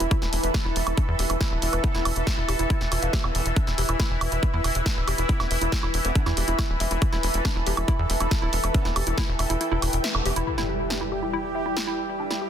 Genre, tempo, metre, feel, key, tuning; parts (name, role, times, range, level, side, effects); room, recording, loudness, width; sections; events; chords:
psychedelic trance; 139 BPM; 4/4; straight; E minor; A4 = 440 Hz
bubbling stepped-filter texture; sustained chords; 0.0-12.5 s; E3 to A4; -31 LUFS; equal; chorus, built-in reverb, sidechain pumping
woody wave-folded pluck; riff; 0.0-12.5 s; D4 to F5; -33 LUFS; moving between left 5 dB and right 2 dB; chorus, auto-pan, sidechain pumping, ping-pong delay
tight sequencer bass; bass; 0.0-10.4 s; D1 to E2; -26 LUFS; equal
big-room dance drum kit; drums; 0.0-12.4 s; hi-hat, snare drum, woodblock; -30 LUFS; right 2 dB
ethereal airy pad; texture; 0.0-12.5 s; E4 to E6; -31 LUFS; right 2 dB; ensemble chorus, built-in reverb, sidechain pumping
electronic kick drum; drums; 0.1-9.3 s; -25 LUFS; equal
formant-sweep wobble bass; second line; 1.8-10.3 s; B3; -43 LUFS; right 4 dB
impact; sound effects; 10.5-12.2 s; -34 LUFS; equal
light reverb, digital ambience; dense, heavily limited modern master; -22 LUFS; side -9 dB against mid
0.0-10.5 A section; 10.5-12.5 B section
kick drops out 9.6-10.5; band accent 10.0; impact 10.5-12.2
0.0 E5